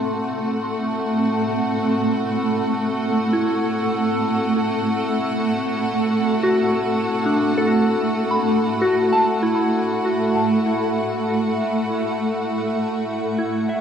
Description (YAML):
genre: ambient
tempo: free time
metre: none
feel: none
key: A dorian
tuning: A4 = 442 Hz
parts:
  - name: granular cloud pad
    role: sustained chords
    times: 0.0-13.8 s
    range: A3 to A5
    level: -20 LUFS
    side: right 1 dB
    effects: built-in reverb
  - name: soft synth bell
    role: arpeggios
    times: 0.0-13.8 s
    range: D4 to C6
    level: -24 LUFS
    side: left 1 dB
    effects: chorus, tape echo
  - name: overtone-sweeping drone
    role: drone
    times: 0.0-13.8 s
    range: A3 to E4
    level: -30 LUFS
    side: equal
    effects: chorus, built-in reverb
  - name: rich studio violin section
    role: texture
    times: 0.0-13.8 s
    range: F#4 to F#5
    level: -29 LUFS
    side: equal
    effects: none
room: wet spring reverb, RT60 2.7 s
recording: echo-heavy mix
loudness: -18 LUFS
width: side -8 dB against mid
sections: 0.0-13.8 A section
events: fade-in on synth drone 0.0-13.8; fade-in on violin section 0.0-13.8; fade-out 12.1-13.8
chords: 0.0 Am; 7.7 E5/A